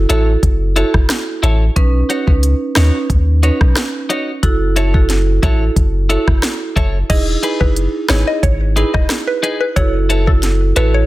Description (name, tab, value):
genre	dancehall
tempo	90 BPM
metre	4/4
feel	straight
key	F# dorian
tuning	A4 = 439 Hz
part	punchy sub bass	bass	0.0-11.0 s	E1 to D#2	-14 LUFS	equal	none
part	marimba with medium mallets	accompaniment	0.1-11.1 s	C#4 to B4	-20 LUFS	right 4 dB	none
part	twelve-string electric guitar	arpeggios	0.1-11.0 s	D#4 to C#5	-21 LUFS	left 2 dB	none
part	island pop drum kit	drums	0.1-10.9 s	crash cymbal, hi-hat, kick drum, rim click, snare drum	-16 LUFS	equal	none
part	mallet-like synth pluck	melody	7.1-11.1 s	A4 to D#5	-21 LUFS	equal	chorus, digital delay
room	digital ambience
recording	dense, heavily limited modern master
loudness	-12 LUFS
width	side -17 dB against mid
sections	0.0-7.1 A section; 7.1-11.1 B section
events	none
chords	0.0 F#m7; 1.8 Badd9; 4.4 F#m7; 7.1 Emaj7; 9.8 F#m7